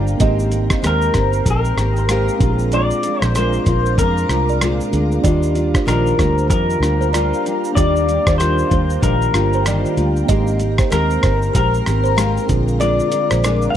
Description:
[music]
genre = indie pop, bedroom pop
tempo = 95 BPM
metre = 4/4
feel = swing 60% on 16ths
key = Eb major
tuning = A4 = 441 Hz
[part]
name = kalimba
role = second line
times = 0.0-13.7 s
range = Bb4 to F5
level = -26 LUFS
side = right 4 dB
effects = analog chorus, tape echo
[part]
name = fingerpicked steel-string acoustic guitar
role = accompaniment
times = 0.0-13.8 s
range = Bb2 to Bb4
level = -23 LUFS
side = left 3 dB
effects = analog chorus, warbly pitch drift
[part]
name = mellow tine electric piano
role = accompaniment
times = 0.0-13.8 s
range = D3 to Bb4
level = -25 LUFS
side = right 5 dB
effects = slow stereo tremolo
[part]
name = ethereal airy pad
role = sustained chords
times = 0.0-13.8 s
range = D4 to D6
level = -30 LUFS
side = equal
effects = ensemble chorus, built-in reverb, phaser
[part]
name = vintage muted fingered electric bass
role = bass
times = 0.0-13.7 s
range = G1 to F2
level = -18 LUFS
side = equal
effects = none
[part]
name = dusty soul sampler-style drum kit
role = drums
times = 0.1-13.7 s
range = hi-hat, kick drum, rim click, shaker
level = -20 LUFS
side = equal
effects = none
[part]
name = electric guitar through a small old amp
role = melody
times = 0.9-13.8 s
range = Bb4 to F5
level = -21 LUFS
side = left 3 dB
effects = lush chorus, tape echo
[sound]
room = digital ambience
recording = dry, close 1970s-style studio recording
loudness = -14 LUFS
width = side -10 dB against mid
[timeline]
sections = 0.0-13.8 A section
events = none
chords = 0.2 Abmaj9; 2.4 Bb7; 5.2 Ebmaj9; 10.3 Abmaj9; 12.5 Bb7

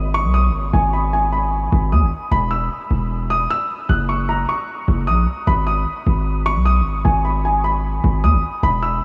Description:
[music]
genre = hip hop, trap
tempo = 152 BPM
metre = 4/4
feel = half-time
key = G# minor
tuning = A4 = 440 Hz
[part]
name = dark concert grand piano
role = melody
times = 0.0-9.0 s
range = G#5 to F#6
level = -23 LUFS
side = equal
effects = analog delay
[part]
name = hard-hitting 808-style bass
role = bass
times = 0.0-9.0 s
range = E1 to D#2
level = -20 LUFS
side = equal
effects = none
[sound]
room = moderate huge ambient reverb, RT60 7.3 s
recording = dreamy mix soaked in reverb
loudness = -19 LUFS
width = mono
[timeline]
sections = 0.0-9.0 A section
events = none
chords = 0.0 G#m; 2.3 E5; 3.9 F#5; 5.5 G#m

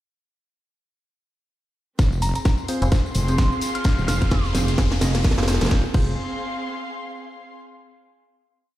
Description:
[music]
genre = bass house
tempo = 129 BPM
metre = 4/4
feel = swing 58% on 16ths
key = F minor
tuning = A4 = 440 Hz
[part]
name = wobble bass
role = bass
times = 2.0-6.2 s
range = Eb1 to F1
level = -22 LUFS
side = equal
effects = chorus, tube saturation, sidechain pumping
[part]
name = electronic kick drum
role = drums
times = 2.0-6.1 s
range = none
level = -19 LUFS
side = equal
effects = none
[part]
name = garage drum kit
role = drums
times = 2.0-6.0 s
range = crash cymbal, hi-hat, snare drum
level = -27 LUFS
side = equal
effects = none
[part]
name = tambourine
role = percussion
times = 2.0-5.7 s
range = none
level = -36 LUFS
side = left 4 dB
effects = none
[part]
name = riser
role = sound effects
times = 2.6-5.7 s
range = none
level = -35 LUFS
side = equal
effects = none
[part]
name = dark studio string section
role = texture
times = 2.0-7.5 s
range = C4 to C6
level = -32 LUFS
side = left 1 dB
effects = sidechain pumping
[part]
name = glassy synth bell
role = melody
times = 2.2-4.4 s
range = Bb5 to F6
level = -32 LUFS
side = right 1 dB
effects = chorus, tremolo, tape echo
[part]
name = percussive organ stab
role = stabs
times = 2.7-6.1 s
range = C4 to Eb5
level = -30 LUFS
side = right 1 dB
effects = chorus, sidechain pumping, tape echo
[part]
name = metallic FM bass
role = bass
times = 2.8-5.6 s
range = F1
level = -22 LUFS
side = equal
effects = sidechain pumping
[sound]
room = light reverb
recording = played on a big sound system in a bare room, stone room reverb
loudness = -19 LUFS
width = side -14 dB against mid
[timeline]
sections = 2.0-5.7 build; 5.7-7.6 final chord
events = build-up 2.0-5.7; drum fill 2.0-5.7; riser 2.6-5.7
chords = 2.0 Fm

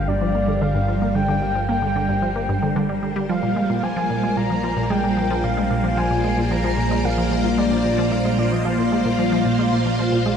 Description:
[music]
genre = ambient, sequencer-driven space music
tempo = 112 BPM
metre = 4/4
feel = straight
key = unclear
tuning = A4 = 441 Hz
[part]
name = breathy flute-like synth lead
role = melody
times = 0.0-10.4 s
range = D5 to Bb5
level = -25 LUFS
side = left 1 dB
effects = analog chorus, analog delay
[part]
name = phased string machine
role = sustained chords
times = 0.0-10.4 s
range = G3 to D5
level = -24 LUFS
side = left 1 dB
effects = ensemble chorus, phaser
[part]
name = resonant blip pluck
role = riff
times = 0.0-10.4 s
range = G2 to Bb3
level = -24 LUFS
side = equal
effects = chorus, analog delay
[part]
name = analog drone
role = bass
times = 0.0-10.4 s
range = G1 to Bb1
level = -26 LUFS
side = equal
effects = chorus, tube saturation
[part]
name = pulsing gated texture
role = texture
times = 0.1-10.4 s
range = G3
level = -27 LUFS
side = right 3 dB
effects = chorus, built-in reverb
[sound]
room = wet cathedral reverb, RT60 5.7 s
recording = in a vast, echoing space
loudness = -18 LUFS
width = side -7 dB against mid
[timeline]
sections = 0.0-10.4 A section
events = fade-in on string machine 0.0-10.4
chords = 0.0 Gm; 3.3 Bbadd9

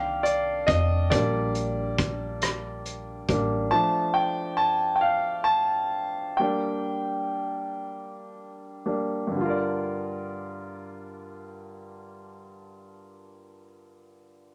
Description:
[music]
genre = six-eight pop ballad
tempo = 37-46 BPM (dotted quarters)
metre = 6/8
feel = straight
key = G minor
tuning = A4 = 436 Hz
[part]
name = clear concert grand piano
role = accompaniment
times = 0.0-14.5 s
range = G2 to A5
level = -28 LUFS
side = equal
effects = none
[part]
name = upright bass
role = bass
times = 0.0-3.7 s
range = F1 to C2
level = -32 LUFS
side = equal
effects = none
[part]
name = loose indie drum kit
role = drums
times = 0.3-3.5 s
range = hi-hat, kick drum, rim click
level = -31 LUFS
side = equal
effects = none
[sound]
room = moderate club reverb, RT60 0.6 s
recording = none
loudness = -26 LUFS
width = mono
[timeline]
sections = 0.0-9.4 A section; 9.4-12.6 B section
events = grand piano solo 0.0-9.4; slowing down 3.7-9.4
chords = 0.0 Cm7; 1.1 Gm/Bb; 3.7 Dm; 6.4 Gm; 9.4 Gm7

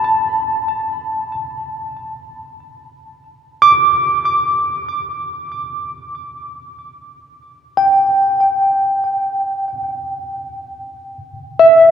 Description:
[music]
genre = ambient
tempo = free time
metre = none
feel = none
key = unclear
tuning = A4 = 440 Hz
[part]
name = bright tine electric piano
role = solo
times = 0.0-11.9 s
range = E5 to D6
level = -14 LUFS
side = equal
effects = medium stereo tremolo, tape echo
[sound]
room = wet cathedral reverb, RT60 5.7 s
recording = none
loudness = -14 LUFS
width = side -8 dB against mid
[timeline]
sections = 0.0-11.2 A section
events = none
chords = 0.0 Gadd9; 11.2 N.C.

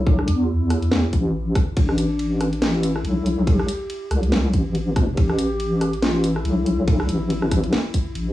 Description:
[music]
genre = deep dubstep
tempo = 141 BPM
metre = 4/4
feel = swing 57% on 16ths, half-time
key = A minor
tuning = A4 = 441 Hz
[part]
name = breathy mellow low ney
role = melody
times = 0.0-8.1 s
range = D4 to A4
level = -28 LUFS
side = left 1 dB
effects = cassette tape, dub echo
[part]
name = deep soft wobble bass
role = bass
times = 0.0-8.3 s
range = A1 to E2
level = -20 LUFS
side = equal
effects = chorus
[part]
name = electronic kick drum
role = drums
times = 0.1-8.0 s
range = none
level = -19 LUFS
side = equal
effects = cassette tape
[part]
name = garage drum kit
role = drums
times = 0.2-8.2 s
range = hi-hat, ride cymbal, rim click, snare drum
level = -26 LUFS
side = equal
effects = cassette tape
[sound]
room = light reverb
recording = home recording on cassette, studio reverb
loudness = -18 LUFS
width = side -15 dB against mid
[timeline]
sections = 0.0-8.3 A section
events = none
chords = 0.0 A5

